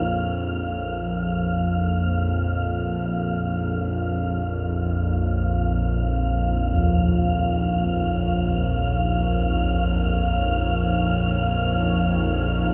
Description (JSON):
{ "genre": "dark ambient drone", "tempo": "free time", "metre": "none", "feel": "none", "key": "Bb minor", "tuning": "A4 = 440 Hz", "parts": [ { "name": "dark analog pad", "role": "sustained chords", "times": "0.0-12.7 s", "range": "Eb4 to Db5", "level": "-37 LUFS", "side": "equal", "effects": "chorus" }, { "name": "bowed-like drone", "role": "drone", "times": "0.0-12.7 s", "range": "Bb1 to F2", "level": "-24 LUFS", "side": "equal", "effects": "built-in reverb" }, { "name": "wind-like tuned noise texture", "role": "texture", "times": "0.0-12.7 s", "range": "F5", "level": "-31 LUFS", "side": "equal", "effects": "built-in reverb" }, { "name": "gamelan-type bossed gongs", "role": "arpeggios", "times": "6.7-12.7 s", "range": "Eb2", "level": "-32 LUFS", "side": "equal", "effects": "none" } ], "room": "wet cathedral reverb, RT60 7.3 s", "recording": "in a vast, echoing space", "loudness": "-23 LUFS", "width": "mono", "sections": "0.1-12.7 A section", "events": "fade-in on analog synth pad 0.1-12.7", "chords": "0.1 Bbm" }